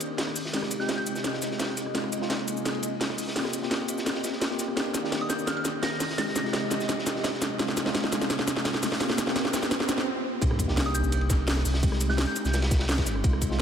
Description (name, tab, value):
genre	liquid drum and bass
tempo	170 BPM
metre	4/4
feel	straight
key	C minor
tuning	A4 = 441 Hz
part	tine electric piano	accompaniment	0.0-13.6 s	Ab3 to G4	-32 LUFS	equal	medium stereo tremolo, low-pass filter, ping-pong delay
part	airy breathy pad	sustained chords	0.0-10.1 s	C3 to Eb5	-36 LUFS	equal	chorus, phaser, sidechain pumping
part	crunchy breakbeat drum kit	drums	0.0-13.6 s	hi-hat, ride cymbal, snare drum	-35 LUFS	equal	high-pass filter on hats, high-pass filter on cymbals, high-pass filter on snare, high-pass filter on room
part	garage drum kit	drums	0.0-13.6 s	cabasa, hi-hat, rim click, snare drum	-29 LUFS	equal	none
part	soft synth bell	melody	0.8-1.2, 5.2-6.4, 10.9-12.5 s	Eb6 to Bb6	-36 LUFS	right 1 dB	chorus, low-pass filter, ping-pong delay
part	riser, swell and sub drop	sound effects	6.9-11.8 s	none	-35 LUFS	right 1 dB	none
part	sub bass with octave	bass	10.4-13.6 s	G1 to C2	-27 LUFS	equal	none
part	electronic kick drum	drums	10.4-13.5 s	none	-26 LUFS	equal	none
room	light reverb, digital ambience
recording	none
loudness	-25 LUFS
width	side -8 dB against mid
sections	0.0-10.4 A section; 10.4-13.6 B section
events	build-up 0.0-10.4; drum fill 0.0-10.1; filter sweep on tine electric piano 0.0-10.4; riser 6.9-10.1; swell 9.7-10.4; stop 10.1-10.4; drop 10.4-13.6; impact 10.4-11.8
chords	0.4 Fm9/C; 1.9 Bb7sus4/C; 3.4 Eb6; 4.8 Cm9; 6.0 Fm9/C; 7.6 Bb7sus4/C; 9.0 Eb6; 10.4 Cm9; 11.7 Abmaj7